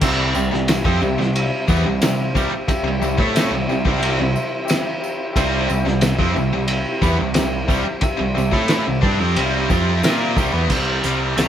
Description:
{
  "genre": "classic rock",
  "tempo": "90 BPM",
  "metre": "4/4",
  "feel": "straight",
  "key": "C major",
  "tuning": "A4 = 441 Hz",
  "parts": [
    { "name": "overdriven reed electric piano", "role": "accompaniment", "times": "0.0-10.6 s", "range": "G4 to G5", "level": "-28 LUFS", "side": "left 4 dB", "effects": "fast tremolo" },
    { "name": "string machine, full ensemble", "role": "sustained chords", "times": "0.0-11.5 s", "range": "C4 to E5", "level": "-30 LUFS", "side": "right 2 dB", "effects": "ensemble chorus" },
    { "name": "biting overdriven guitar", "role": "riff", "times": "0.0-11.5 s", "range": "C3 to Bb4", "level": "-24 LUFS", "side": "right 6 dB", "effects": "none" },
    { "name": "tight distorted guitar", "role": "riff", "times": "0.0-11.5 s", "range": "C3 to Bb4", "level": "-24 LUFS", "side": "left 5 dB", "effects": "distortion" },
    { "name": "growling picked electric bass", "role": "bass", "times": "0.0-11.5 s", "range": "C2 to Bb2", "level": "-23 LUFS", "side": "equal", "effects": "overdrive" },
    { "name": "cloth-damped thuddy drum kit", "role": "drums", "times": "0.0-11.5 s", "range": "crash cymbal, hi-hat, kick drum, ride cymbal, snare drum", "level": "-21 LUFS", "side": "equal", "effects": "none" },
    { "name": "tambourine", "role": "percussion", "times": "0.0-11.5 s", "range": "none", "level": "-39 LUFS", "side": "right 5 dB", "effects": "none" },
    { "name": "octave-fuzz lead guitar", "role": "melody", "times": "11.4-11.5 s", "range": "Bb5", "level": "-31 LUFS", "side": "equal", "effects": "wah, distortion, tape echo" }
  ],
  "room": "moderate stone room reverb, RT60 1.3 s",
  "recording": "band playing live in one room",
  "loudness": "-16 LUFS",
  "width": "side -10 dB against mid",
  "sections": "0.0-10.7 A section",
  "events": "none",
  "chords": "0.0 C"
}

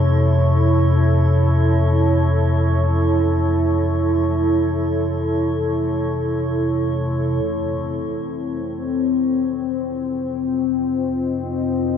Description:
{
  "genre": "dark ambient drone",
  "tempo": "free time",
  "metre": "none",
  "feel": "none",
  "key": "unclear",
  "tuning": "A4 = 439 Hz",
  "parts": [
    { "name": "deep dark ambient pad", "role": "sustained chords", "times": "0.0-12.0 s", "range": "C4 to Eb5", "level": "-20 LUFS", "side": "left 1 dB", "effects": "chorus, built-in reverb" },
    { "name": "deep rumbling drone", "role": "drone", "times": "0.0-12.0 s", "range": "F2 to C3", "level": "-20 LUFS", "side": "left 1 dB", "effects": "built-in reverb" },
    { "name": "metallic inharmonic drone", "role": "texture", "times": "0.0-7.5 s", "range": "C#5", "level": "-30 LUFS", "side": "right 2 dB", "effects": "chorus, built-in reverb, phaser" }
  ],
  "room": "wet huge ambient reverb, RT60 8.4 s",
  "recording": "dark, warm production",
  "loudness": "-17 LUFS",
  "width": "side -8 dB against mid",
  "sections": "0.0-7.4 A section; 7.4-12.0 B section",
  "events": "filter sweep on synth drone 7.4-12.0",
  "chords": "0.0 A; 7.4 F5"
}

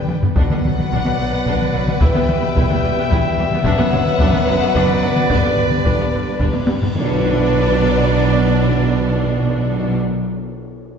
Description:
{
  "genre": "cinematic, epic orchestral film score",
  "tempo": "109 BPM",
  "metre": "3/4",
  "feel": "straight",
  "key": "B minor",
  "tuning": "A4 = 441 Hz",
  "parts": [
    { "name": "rich symphonic violin section", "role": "melody", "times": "0.0-9.9 s", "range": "D5 to G5", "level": "-27 LUFS", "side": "left 5 dB", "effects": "none" },
    { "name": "warm symphonic violin section", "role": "second line", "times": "0.0-10.0 s", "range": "B4", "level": "-26 LUFS", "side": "left 1 dB", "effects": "none" },
    { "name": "dark trombone section", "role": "sustained chords", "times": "0.0-10.0 s", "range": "B2 to G3", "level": "-27 LUFS", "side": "right 1 dB", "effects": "none" },
    { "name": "mellow French horn section", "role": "sustained chords", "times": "0.0-9.9 s", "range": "B3 to B4", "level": "-24 LUFS", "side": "equal", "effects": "none" },
    { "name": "dark trumpet section", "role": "stabs", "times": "0.0-10.0 s", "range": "D5 to E5", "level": "-25 LUFS", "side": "left 3 dB", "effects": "none" },
    { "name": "rich symphonic viola section", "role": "accompaniment", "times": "0.1-10.0 s", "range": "F#3 to E4", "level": "-25 LUFS", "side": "right 2 dB", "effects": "none" },
    { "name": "clear symphonic cello section", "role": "bass", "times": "0.1-9.9 s", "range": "E2 to B2", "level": "-25 LUFS", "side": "right 3 dB", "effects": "none" },
    { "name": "rich symphonic double bass section", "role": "bass", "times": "0.1-10.0 s", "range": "E1 to B1", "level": "-22 LUFS", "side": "right 3 dB", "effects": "none" },
    { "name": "taiko ensemble", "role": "drums", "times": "0.1-7.1 s", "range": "none", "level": "-19 LUFS", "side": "left 1 dB", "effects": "none" },
    { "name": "timpani", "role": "percussion", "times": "0.4-1.1, 7.0-10.0 s", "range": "B2", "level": "-23 LUFS", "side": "equal", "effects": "none" },
    { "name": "cymbal swell and tam-tam", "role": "percussion", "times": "3.7-9.1 s", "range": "none", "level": "-29 LUFS", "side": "left 1 dB", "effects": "none" }
  ],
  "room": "wet scoring stage reverb, RT60 1.7 s",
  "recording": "heard from further back in the room, nothing above 8.0 kHz",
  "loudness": "-14 LUFS",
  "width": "side -6 dB against mid",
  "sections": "0.0-7.0 A section; 7.0-10.2 B section",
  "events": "drum fill 0.0-0.4, 6.5-7.0; band accent 7.0-7.5",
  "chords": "0.4 Bm; 2.0 Em; 3.7 Bm/F#; 5.3 G; 7.0 Bm"
}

